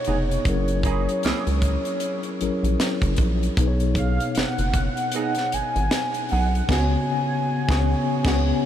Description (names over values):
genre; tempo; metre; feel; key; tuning
R&B, neo-soul; 77 BPM; 4/4; swing 56% on 16ths; unclear; A4 = 442 Hz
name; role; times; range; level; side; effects
warm velvety synth lead; melody; 0.0-8.7 s; C#5 to G#5; -28 LUFS; right 1 dB; chorus, tape echo
mellow tine electric piano; accompaniment; 0.0-8.7 s; B2 to C#5; -26 LUFS; left 4 dB; medium stereo tremolo
tight funk drum kit; drums; 0.0-8.5 s; crash cymbal, hi-hat, kick drum, snare drum; -27 LUFS; equal; none
archtop guitar, miked and amplified; second line; 0.1-8.5 s; A#3 to G#4; -33 LUFS; right 6 dB; wah, ensemble chorus, tape echo
rubbery square bass; bass; 0.1-8.5 s; E#1 to C#2; -23 LUFS; equal; none
room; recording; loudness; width
moderate huge ambient reverb, RT60 7.8 s; dreamy mix soaked in reverb; -20 LUFS; side -10 dB against mid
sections
0.0-8.7 A section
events
drum fill 6.7-8.7; band accent 6.7-8.7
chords
0.5 F#9; 3.6 B6; 6.7 C#7sus4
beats
| 0.45 1.23 2.01 2.79 | 3.57 4.35 5.13 5.91 | 6.69 7.47 8.25